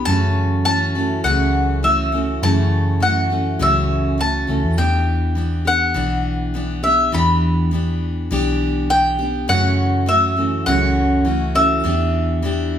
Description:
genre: acoustic folk duo or small band.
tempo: 102 BPM.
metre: 4/4.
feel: straight.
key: unclear.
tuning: A4 = 440 Hz.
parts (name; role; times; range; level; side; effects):
mandolin; melody; 0.0-12.8 s; E5 to B5; -19 LUFS; left 1 dB; none.
picked steel-string acoustic guitar; accompaniment; 0.0-12.8 s; F#2 to G4; -21 LUFS; equal; none.
hollow-body short-scale picked electric bass; bass; 0.0-12.8 s; B1 to F#2; -20 LUFS; right 1 dB; none.
room: moderate large studio reverb, RT60 1.1 s.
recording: band playing live in one room.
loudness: -16 LUFS.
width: side -9 dB against mid.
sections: 0.0-12.8 A section.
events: none.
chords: 0.1 F#m7; 4.8 Em7; 9.5 F#m7; 11.8 Em7.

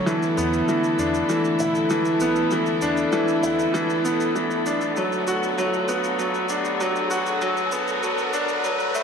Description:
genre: piano and strings electronica.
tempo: 98 BPM.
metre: 4/4.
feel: straight.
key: unclear.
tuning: A4 = 439 Hz.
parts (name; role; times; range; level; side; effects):
rich chamber string section; sustained chords; 0.0-9.0 s; D3 to A4; -26 LUFS; left 2 dB; none.
bright baby grand piano; riff; 0.0-9.0 s; E3 to F#4; -22 LUFS; equal; tape echo.
shaker; drums; 0.1-9.0 s; none; -38 LUFS; right 3 dB; studio reverb.
riser; sound effects; 4.1-9.0 s; none; -33 LUFS; equal; none.
round analog bass; bass; 0.4-9.0 s; D1 to E2; -38 LUFS; equal; none.
room: wet scoring stage reverb, RT60 1.8 s, small room ambience.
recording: dark, warm production, high-pass filter.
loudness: -20 LUFS.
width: side -6 dB against mid.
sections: 0.0-9.0 A section.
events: build-up 0.0-9.0; filter sweep on string section 0.0-9.0; filter sweep 0.0-9.0; riser 4.1-9.0.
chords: 0.1 E7sus4; 5.0 Bm7/D.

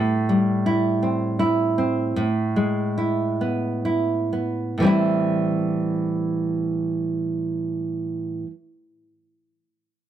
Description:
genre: pop.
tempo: 40-56 BPM (dotted quarters).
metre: 6/8.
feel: straight.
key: A minor.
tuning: A4 = 441 Hz.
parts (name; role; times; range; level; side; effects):
nylon-string guitar; accompaniment; 0.0-8.5 s; A2 to E4; -20 LUFS; right 1 dB; none.
room: little or no reverb.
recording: dry, close 1970s-style studio recording.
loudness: -20 LUFS.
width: side -10 dB against mid.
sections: 0.0-4.8 A section; 4.8-10.1 B section.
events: slowing down 0.0-4.8.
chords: 0.0 Am7; 2.2 E/A; 4.8 Am7.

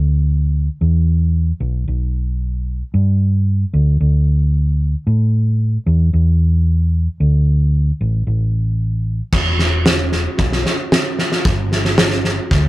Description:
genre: indie folk with a building arrangement.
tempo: 113 BPM.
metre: 4/4.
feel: straight.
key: unclear.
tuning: A4 = 439 Hz.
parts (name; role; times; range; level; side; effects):
hollow-body short-scale fingered electric bass; bass; 0.0-12.7 s; E1 to A2; -14 LUFS; equal; none.
loose indie drum kit; drums; 9.3-12.6 s; crash cymbal, kick drum, snare drum; -15 LUFS; equal; none.
room: light reverb.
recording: rough rehearsal-room recording, tube saturation.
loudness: -14 LUFS.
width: side -18 dB against mid.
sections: 0.0-9.3 A section; 9.3-12.7 B section.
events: none.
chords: none.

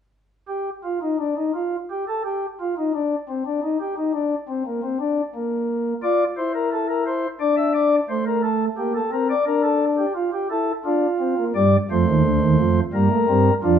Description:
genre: classical, baroque-style 3-part fugue for pipe organ.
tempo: 87 BPM.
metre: 4/4.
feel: straight.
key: G minor.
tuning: A4 = 440 Hz.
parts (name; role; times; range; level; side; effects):
pipe organ, flutes; solo; 0.5-13.8 s; D2 to E5; -19 LUFS; equal; none.
room: wet stone room reverb, RT60 1.1 s.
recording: faint mains hum.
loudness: -19 LUFS.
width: side -8 dB against mid.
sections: 0.5-13.8 A section.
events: none.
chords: 0.5 N.C.; 6.0 Dm; 7.4 D5; 8.8 Gm/Bb; 10.2 Dm; 11.5 G5; 12.9 Gm.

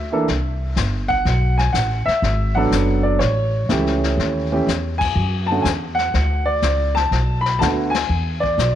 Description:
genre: jazz piano trio.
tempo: 123 BPM.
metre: 4/4.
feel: swing 68% on 8ths.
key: unclear.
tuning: A4 = 441 Hz.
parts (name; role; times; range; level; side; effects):
warm baby grand piano; melody; 0.0-8.8 s; D3 to B5; -20 LUFS; right 1 dB; none.
upright bass; bass; 0.0-8.8 s; F#1 to F#2; -20 LUFS; equal; none.
vintage brush drum kit; drums; 0.3-8.8 s; brushed snare drum, hi-hat, kick drum, ride cymbal, snare drum; -27 LUFS; left 8 dB; none.
room: light reverb, small room ambience.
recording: 1960s-style stereo.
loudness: -17 LUFS.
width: side -11 dB against mid.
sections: 0.0-8.8 A section.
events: band accent 4.9, 7.9.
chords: 0.3 C; 1.3 Bm7; 3.2 A7; 5.2 Dmaj7; 7.1 Bm7; 8.1 E5.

